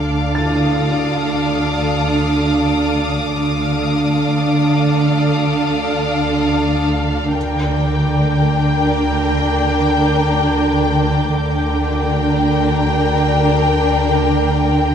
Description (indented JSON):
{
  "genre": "cinematic, suspense film score",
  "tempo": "free time",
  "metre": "none",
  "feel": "none",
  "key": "D minor",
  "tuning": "A4 = 441 Hz",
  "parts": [
    { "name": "warm symphonic violin section", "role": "melody", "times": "0.0-14.9 s", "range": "F5 to G5", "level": "-22 LUFS", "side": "left 3 dB", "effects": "none" },
    { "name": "warm symphonic violin section", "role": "second line", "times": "0.0-14.9 s", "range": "D4 to Bb4", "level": "-19 LUFS", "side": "right 1 dB", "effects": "none" },
    { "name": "dark symphonic cello section", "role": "bass", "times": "0.0-14.9 s", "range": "D3", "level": "-21 LUFS", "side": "right 1 dB", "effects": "none" },
    { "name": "warm studio double bass section", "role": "bass", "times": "0.0-14.9 s", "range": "D2", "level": "-19 LUFS", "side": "right 1 dB", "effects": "none" },
    { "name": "warm symphonic violin section", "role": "texture", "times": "0.0-14.8 s", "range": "D6 to G6", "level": "-28 LUFS", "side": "left 3 dB", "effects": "none" },
    { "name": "dark baby grand piano", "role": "texture", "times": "0.3-7.4 s", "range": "A6", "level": "-32 LUFS", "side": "equal", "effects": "none" }
  ],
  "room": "wet church reverb, RT60 3.2 s",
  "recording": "recorded in a church or concert hall",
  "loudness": "-14 LUFS",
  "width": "side -8 dB against mid",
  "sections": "0.0-14.9 A section",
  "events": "none",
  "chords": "0.0 Dm"
}